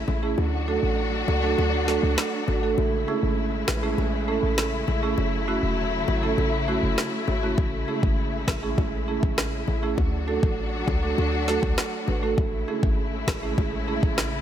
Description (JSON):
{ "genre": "dancehall", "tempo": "100 BPM", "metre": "4/4", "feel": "straight", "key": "A major", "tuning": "A4 = 441 Hz", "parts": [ { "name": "warm symphonic string section", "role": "sustained chords", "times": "0.0-14.4 s", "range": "C#3 to F#4", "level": "-29 LUFS", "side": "left 3 dB", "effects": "sidechain pumping" }, { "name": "short 808-style bass", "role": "bass", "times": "0.0-14.4 s", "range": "E1 to D2", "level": "-27 LUFS", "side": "equal", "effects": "none" }, { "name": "marimba with medium mallets", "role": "accompaniment", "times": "0.1-14.0 s", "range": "A3 to B4", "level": "-27 LUFS", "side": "right 5 dB", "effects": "sidechain pumping" }, { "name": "bongos", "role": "percussion", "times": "0.1-13.7 s", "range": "none", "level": "-34 LUFS", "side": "left 11 dB", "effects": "none" }, { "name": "afro-pop drum kit", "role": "drums", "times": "1.9-14.3 s", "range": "kick drum, rim click, snare drum", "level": "-26 LUFS", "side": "equal", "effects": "none" } ], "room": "light reverb, small room ambience", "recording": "none", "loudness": "-22 LUFS", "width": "side -10 dB against mid", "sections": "0.0-14.4 A section", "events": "break 0.0-7.6; kick muted 6.4-7.6", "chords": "0.4 D; 2.8 Amaj7; 5.2 F#m7; 7.6 Amaj7; 10.0 D; 12.4 Amaj7" }